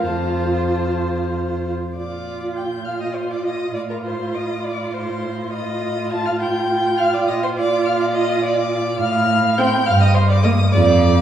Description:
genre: quick classical-period movement for string quartet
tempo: 68 BPM (dotted quarters)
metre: 6/8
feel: rubato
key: Bb major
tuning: A4 = 440 Hz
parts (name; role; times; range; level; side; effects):
- rich violin; melody; 0.0-11.2 s; A5 to A6; -28 LUFS; left 4 dB; none
- warm violin; second line; 0.0-11.2 s; Bb4 to A5; -22 LUFS; right 1 dB; none
- warm viola; accompaniment; 0.0-10.6 s; Bb3 to F4; -24 LUFS; right 2 dB; none
- rich cello; bass; 0.0-11.2 s; F2 to Bb2; -21 LUFS; right 1 dB; none
room: wet scoring stage reverb, RT60 1.8 s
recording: heard from further back in the room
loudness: -17 LUFS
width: side -10 dB against mid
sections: 0.0-2.0 A section; 2.0-11.2 B section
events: none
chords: 0.1 F; 2.0 Bb; 3.8 F/A; 7.3 Bb; 9.0 F/A; 9.9 Ebmaj13/G

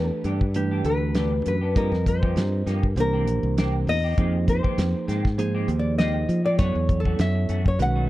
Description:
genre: electric jazz fusion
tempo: 99 BPM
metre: 4/4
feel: swing 54% on 16ths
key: unclear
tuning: A4 = 438 Hz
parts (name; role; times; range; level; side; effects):
- nylon-string guitar; melody; 0.0-8.1 s; G4 to F#5; -28 LUFS; left 2 dB; none
- bell-like tine electric piano; accompaniment; 0.0-8.1 s; D#3 to Eb5; -28 LUFS; right 5 dB; none
- fingered electric bass; bass; 0.0-8.1 s; Bb1 to F3; -24 LUFS; equal; none
- semi-hollow electric guitar; stabs; 0.1-8.1 s; Eb3 to G4; -36 LUFS; equal; lush chorus
- damped 70s drum kit; drums; 0.2-8.0 s; hi-hat, kick drum, snare drum; -24 LUFS; equal; none
room: little or no reverb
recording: dark, warm production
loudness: -20 LUFS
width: side -16 dB against mid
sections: 0.0-8.1 A section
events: none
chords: 0.0 Em7; 1.8 Gm7b5; 3.0 C7; 4.2 Fm9; 6.6 F#m7

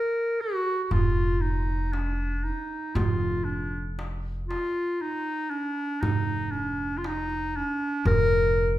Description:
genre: Turkish makam ensemble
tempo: 118 BPM (eighths)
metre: 10/8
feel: straight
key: F makam hicaz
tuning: A4 = 439 Hz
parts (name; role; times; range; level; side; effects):
- clear clarinet; melody; 0.0-8.8 s; D4-41c to Bb4; -27 LUFS; equal; none
- darbuka; percussion; 0.4-8.3 s; none; -29 LUFS; right 3 dB; none
- upright bass; bass; 0.9-8.8 s; F1; -28 LUFS; equal; none
room: moderate recital hall reverb, RT60 1.3 s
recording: recorded in a church or concert hall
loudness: -25 LUFS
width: side -14 dB against mid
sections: 0.0-8.8 A section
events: none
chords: none

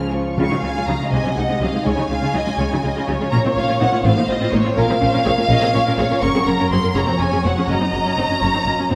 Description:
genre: classical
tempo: 82 BPM (dotted quarters)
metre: 6/8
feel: straight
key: Db major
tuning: A4 = 439 Hz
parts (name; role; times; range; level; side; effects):
- warm symphonic violin section; melody; 0.0-8.9 s; Db5 to F6; -24 LUFS; equal; none
- warm symphonic violin section; second line; 0.0-8.9 s; F4 to F5; -28 LUFS; equal; none
- rich symphonic viola section; accompaniment; 0.0-8.9 s; F3 to Bb4; -25 LUFS; equal; none
- concert harp; arpeggios; 0.0-8.9 s; F2 to F5; -29 LUFS; equal; none
- rich symphonic cello section; bass; 0.0-8.9 s; F2 to Db3; -26 LUFS; equal; none
- rich symphonic double bass section; bass; 0.0-8.9 s; F1 to Db2; -26 LUFS; equal; none
- timpani; percussion; 0.4-1.1 s; Db3; -30 LUFS; equal; none
room: wet scoring stage reverb, RT60 1.7 s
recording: none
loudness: -18 LUFS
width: mono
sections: 0.4-8.9 A section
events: none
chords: 0.4 Db; 1.1 Ab/C; 1.9 Db; 3.3 Bbm7; 4.0 F/A; 4.8 Bbm; 6.2 Gb; 7.0 Db/F; 7.7 Gbmaj7

